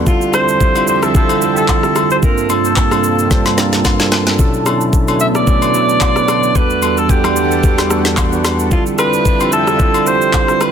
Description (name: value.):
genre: amapiano.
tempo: 111 BPM.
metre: 4/4.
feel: swing 55% on 16ths.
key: unclear.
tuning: A4 = 441 Hz.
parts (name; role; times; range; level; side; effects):
bell-like tine electric piano; accompaniment; 0.0-10.7 s; E2 to F#5; -16 LUFS; moving between right 1 dB and right 9 dB; auto-pan.
lush unison pad; sustained chords; 0.0-10.7 s; C3 to A5; -22 LUFS; left 1 dB; chorus, phaser.
breathy alto saxophone; melody; 0.1-10.7 s; F4 to E5; -16 LUFS; left 1 dB; digital delay.
afro-pop drum kit; drums; 0.1-10.7 s; handclaps, kick drum, rim click, shaker, snare drum; -16 LUFS; left 1 dB; none.
agogo bells and woodblock; percussion; 0.3-10.7 s; none; -23 LUFS; left 9 dB; none.
room: light reverb.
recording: dense, heavily limited modern master.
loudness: -11 LUFS.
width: side -8 dB against mid.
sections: 0.0-10.7 A section.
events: drum fill 3.3-4.4.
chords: 0.1 Dm11; 2.2 Gm11; 4.4 Bm11; 6.6 Em11; 8.7 Dm11.